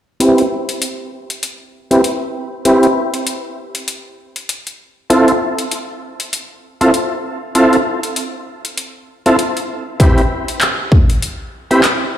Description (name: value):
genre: glitch hop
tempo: 98 BPM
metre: 4/4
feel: swing 58% on 16ths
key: unclear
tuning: A4 = 440 Hz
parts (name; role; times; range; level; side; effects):
- tonewheel organ; stabs; 0.2-11.8 s; C4 to B4; -14 LUFS; equal; chorus vibrato, sidechain pumping, low-pass filter, ping-pong delay
- dubstep drum kit; drums; 0.2-12.0 s; handclaps, hi-hat; -20 LUFS; left 1 dB; none
- electronic kick drum; drums; 10.0-11.1 s; none; -10 LUFS; equal; none
room: wet lush hall reverb, RT60 2.4 s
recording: played on a big sound system in a bare room, large studio reverb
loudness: -13 LUFS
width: side -11 dB against mid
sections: 0.2-12.2 A section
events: filter sweep on tonewheel organ 0.2-12.2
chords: 0.2 Cmaj7; 5.1 Cadd11; 10.0 Cmaj7